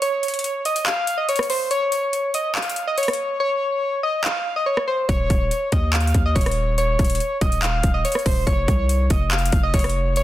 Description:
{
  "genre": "hip hop, trap",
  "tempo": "142 BPM",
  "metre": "4/4",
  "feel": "half-time",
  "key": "unclear",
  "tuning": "A4 = 440 Hz",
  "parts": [
    { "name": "soft electric-piano-like synth keys", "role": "melody", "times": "0.0-10.2 s", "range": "C5 to F5", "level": "-22 LUFS", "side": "equal", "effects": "chorus, ping-pong delay" },
    { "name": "trap drum kit", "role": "drums", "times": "0.0-10.2 s", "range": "handclaps, hi-hat, kick drum, rim click", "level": "-22 LUFS", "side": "equal", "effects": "overdrive" },
    { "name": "long sustained 808-style bass", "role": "bass", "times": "5.1-10.2 s", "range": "Eb1 to Eb2", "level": "-22 LUFS", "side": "equal", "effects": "none" }
  ],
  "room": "little or no reverb",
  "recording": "dense, heavily limited modern master",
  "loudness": "-18 LUFS",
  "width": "side -14 dB against mid",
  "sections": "0.0-10.2 A section",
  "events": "break 0.0-5.1; hi-hats muted 3.4-5.1",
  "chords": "0.0 N.C.; 5.1 Dbadd9/Eb; 8.5 F5"
}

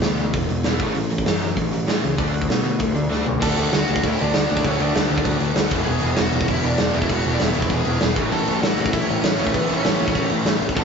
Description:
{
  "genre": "punk rock",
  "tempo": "196 BPM",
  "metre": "4/4",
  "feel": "straight",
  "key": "unclear",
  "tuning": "A4 = 442 Hz",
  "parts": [
    { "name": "biting overdriven guitar", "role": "riff", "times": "0.0-10.8 s", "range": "G2 to F#4", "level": "-28 LUFS", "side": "left 6 dB", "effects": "none" },
    { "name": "distorted electric guitar", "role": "riff", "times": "0.0-10.8 s", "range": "E2 to D4", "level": "-28 LUFS", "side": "right 3 dB", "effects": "overdrive" },
    { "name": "fuzz picked electric bass", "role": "bass", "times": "0.0-10.8 s", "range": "E1 to B2", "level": "-24 LUFS", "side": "equal", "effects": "overdrive" },
    { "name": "big rock drum kit", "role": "drums", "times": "0.0-10.8 s", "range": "crash cymbal, hi-hat, kick drum, snare drum, toms", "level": "-21 LUFS", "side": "equal", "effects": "none" },
    { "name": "lead guitar through a small cranked amp", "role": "melody", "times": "3.4-10.8 s", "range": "B3 to A5", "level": "-26 LUFS", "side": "right 2 dB", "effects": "overdrive" }
  ],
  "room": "light reverb",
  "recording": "rough rehearsal-room recording, nothing above 7.7 kHz",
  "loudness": "-18 LUFS",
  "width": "side -6 dB against mid",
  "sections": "0.0-3.4 A section; 3.4-10.8 B section",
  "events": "drum fill 3.1-3.4",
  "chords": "0.0 E; 0.8 A5; 2.2 D5; 3.4 D; 5.7 E; 8.2 A"
}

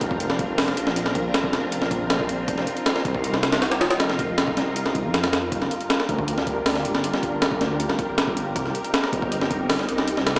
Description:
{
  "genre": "drum and bass, jungle",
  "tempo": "158 BPM",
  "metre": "4/4",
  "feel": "straight",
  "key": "G minor",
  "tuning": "A4 = 440 Hz",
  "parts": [
    { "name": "soft string machine", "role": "sustained chords", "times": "0.0-10.4 s", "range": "C4 to Bb4", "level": "-27 LUFS", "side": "equal", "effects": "ensemble chorus" },
    { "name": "detuned saw bass", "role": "bass", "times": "0.0-10.4 s", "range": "F1 to F2", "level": "-28 LUFS", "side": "equal", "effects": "none" },
    { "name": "breakbeat sampler-style drum kit", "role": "drums", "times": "0.0-10.4 s", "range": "hi-hat, kick drum, snare drum", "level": "-22 LUFS", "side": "equal", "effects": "none" }
  ],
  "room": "moderate lush hall reverb, RT60 2.1 s",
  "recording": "played on a big sound system in a bare room, large studio reverb, small speaker sound",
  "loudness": "-20 LUFS",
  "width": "side -34 dB against mid",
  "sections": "0.0-10.4 A section",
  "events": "none",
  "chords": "0.0 Bbadd9; 2.5 F7sus4; 5.5 Gm7; 8.6 Cm7"
}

